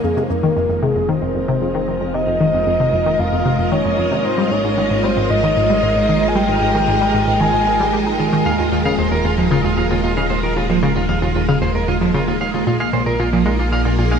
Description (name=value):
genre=ambient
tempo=114 BPM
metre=4/4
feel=straight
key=F minor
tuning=A4 = 444 Hz
part: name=soft octave-layered synth lead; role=melody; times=0.0-8.2 s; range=Ab4 to Ab5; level=-20 LUFS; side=equal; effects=chorus, tape echo
part: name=string machine, full ensemble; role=sustained chords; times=0.0-14.2 s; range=Ab3 to Eb5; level=-20 LUFS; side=equal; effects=ensemble chorus
part: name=analog pluck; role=riff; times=0.0-14.2 s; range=Eb2 to Eb4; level=-20 LUFS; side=equal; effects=chorus, tape echo
part: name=warm sub bass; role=bass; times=0.0-14.2 s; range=Eb1 to Bb1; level=-26 LUFS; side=equal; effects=none
part: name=electric guitar at the edge of break-up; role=arpeggios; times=8.5-14.2 s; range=F3 to F5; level=-21 LUFS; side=right 4 dB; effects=auto-pan, tape echo
room=wet huge ambient reverb, RT60 7.9 s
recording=none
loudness=-15 LUFS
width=side -7 dB against mid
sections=0.0-14.2 A section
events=fade-in on sub bass 0.0-14.2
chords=0.0 Fm7; 4.2 Absus2; 8.5 Ebsus2; 12.7 Bb5